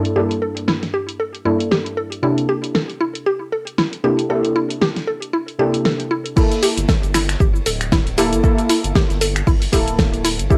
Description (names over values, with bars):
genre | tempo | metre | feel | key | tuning
deep house | 116 BPM | 4/4 | swing 57% on 16ths | G dorian | A4 = 441 Hz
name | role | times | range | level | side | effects
deep mellow chord stab | stabs | 0.0-10.6 s | G2 to A4 | -24 LUFS | equal | chorus, sidechain pumping, cassette tape, analog delay
deep house drum kit | drums | 0.1-10.6 s | cabasa, crash cymbal, finger snaps, hi-hat, snare drum | -24 LUFS | equal | low-pass filter on hats, low-pass filter on snare, low-pass filter on cymbals, low-pass filter on perc, low-pass filter on room
mallet-like synth pluck | arpeggios | 0.2-10.5 s | E4 to A4 | -24 LUFS | equal | chorus, sidechain pumping, cassette tape, analog delay
electronic kick drum | drums | 6.4-10.6 s | none | -19 LUFS | equal | none
soft-mallet drum kit | drums | 6.4-10.6 s | hi-hat, ride cymbal, snare drum | -38 LUFS | equal | sidechain pumping on cymbals, high-pass filter on cymbals, sidechain pumping on hats, high-pass filter on hats, high-pass filter on snare, high-pass filter on room
round analog bass | bass | 6.8-10.5 s | D1 to G1 | -25 LUFS | equal | sidechain pumping
room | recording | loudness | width
light reverb | home recording on cassette | -19 LUFS | mono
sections
0.0-6.4 A section; 6.4-10.6 B section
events
drop 6.4-10.6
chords
0.0 Gm69; 2.2 C13; 6.4 Gm69